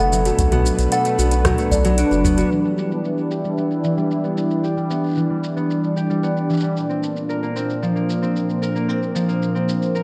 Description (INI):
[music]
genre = folktronica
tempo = 113 BPM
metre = 4/4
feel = straight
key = G major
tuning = A4 = 440 Hz
[part]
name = music box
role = second line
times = 0.0-2.5 s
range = D4 to F#5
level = -25 LUFS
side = equal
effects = delay
[part]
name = warm analog pad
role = sustained chords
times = 0.0-10.0 s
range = Bb2 to C5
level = -25 LUFS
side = equal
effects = chorus
[part]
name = concert harp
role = arpeggios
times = 0.0-10.0 s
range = E3 to Bb4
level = -24 LUFS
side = equal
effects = vintage 12-bit sampler grit, low-pass filter, delay
[part]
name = round analog bass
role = bass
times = 0.0-2.4 s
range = F#1 to B1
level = -22 LUFS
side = equal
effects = none
[part]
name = organic electronic drum kit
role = drums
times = 0.0-10.0 s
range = hi-hat, rim click, shaker, toms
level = -31 LUFS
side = equal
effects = low-pass filter on hats, studio reverb, low-pass filter on perc, low-pass filter on snare, low-pass filter on toms
[part]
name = kick drum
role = drums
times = 0.4-2.4 s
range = none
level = -25 LUFS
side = equal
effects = studio reverb
[sound]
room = moderate echo chamber reverb, RT60 1.7 s, studio ambience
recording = none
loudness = -20 LUFS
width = mono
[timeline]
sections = 0.0-2.5 A section; 2.5-10.0 B section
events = filter sweep on harp 2.5-10.0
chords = 0.0 Bm7; 2.5 G6; 6.8 Bbadd9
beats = | 0.39 0.92 1.45 1.98 | 2.51 3.04 3.57 4.11 | 4.63 5.17 5.70 6.23 | 6.76 7.29 7.82 8.35 | 8.88 9.41 9.95